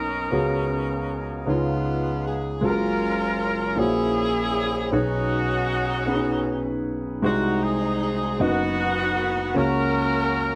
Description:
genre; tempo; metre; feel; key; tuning
gospel; 52 BPM (dotted quarters); 6/8; straight; F# major; A4 = 438 Hz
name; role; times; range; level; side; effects
bright saxophone section; melody; 0.0-10.6 s; G#3 to A#4; -28 LUFS; equal; none
warm grand piano; accompaniment; 0.0-10.6 s; F#1 to D#5; -26 LUFS; equal; none
room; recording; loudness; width
light reverb; dark, warm production; -24 LUFS; mono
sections
0.0-2.6 A section; 2.6-10.6 B section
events
none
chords
0.3 C#7sus4; 1.5 C#9; 2.6 F#maj9; 3.8 F#7/A#; 4.9 B69; 7.2 G#7/B#; 8.4 B/F#; 9.5 F#/C#

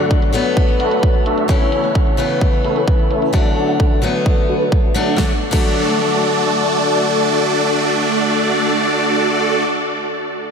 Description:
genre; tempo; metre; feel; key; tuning
EDM, festival progressive house; 130 BPM; 4/4; straight; D major; A4 = 440 Hz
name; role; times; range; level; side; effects
picked steel-string acoustic guitar; accompaniment; 0.0-9.7 s; C#3 to D4; -19 LUFS; left 3 dB; sidechain pumping, diffuse ambient delay
supersaw chords; riff; 0.0-9.6 s; A3 to F#5; -17 LUFS; right 1 dB; phaser, sidechain pumping, low-pass filter, diffuse ambient delay
big-room dance drum kit; drums; 0.1-5.7 s; crash cymbal, hi-hat, snare drum; -30 LUFS; equal; none
electronic kick drum; drums; 0.1-5.7 s; none; -16 LUFS; equal; none
room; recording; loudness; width
wet cathedral reverb, RT60 6.6 s; dreamy mix soaked in reverb; -14 LUFS; side -6 dB against mid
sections
0.0-5.2 A section; 5.2-8.9 B section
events
filter sweep on supersaw synth 0.0-5.2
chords
0.0 D; 1.5 A; 3.3 D

